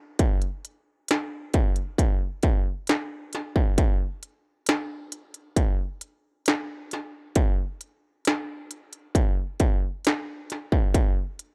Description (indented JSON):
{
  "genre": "pop",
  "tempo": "67 BPM",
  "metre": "4/4",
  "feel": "straight",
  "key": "none",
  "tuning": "none",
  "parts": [
    { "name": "industrial drum kit", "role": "drums", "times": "0.2-11.5 s", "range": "hi-hat, kick drum, snare drum", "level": "-25 LUFS", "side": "equal", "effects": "distortion" }
  ],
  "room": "little or no reverb",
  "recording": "dry, close 1970s-style studio recording",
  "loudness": "-26 LUFS",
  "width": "mono",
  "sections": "0.0-11.5 A section",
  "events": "none",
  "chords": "none"
}